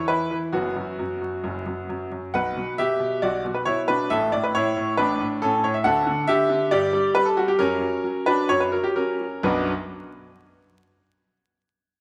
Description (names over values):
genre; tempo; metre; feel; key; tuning
classical-period piano sonatina; 121-139 BPM; 4/4; rubato; B minor; A4 = 439 Hz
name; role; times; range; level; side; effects
bright grand piano; solo; 0.0-9.7 s; F#1 to F#5; -23 LUFS; equal; none
room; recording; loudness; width
wet recital hall reverb, RT60 1.8 s; vinyl crackle; -23 LUFS; mono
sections
0.0-9.5 A section; 9.5-11.3 B section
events
none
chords
0.0 N.C.; 0.5 B5/F#; 2.3 Bm; 4.1 A; 5.9 D; 6.7 N.C.; 7.6 F#; 9.5 Bm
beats
0.09 | 0.54 0.99 1.44 1.89 | 2.35 2.79 3.23 3.67 | 4.11 4.55 4.99 5.42 | 5.86 6.29 6.72 7.16 | 7.60 8.05 8.50 8.97 | 9.46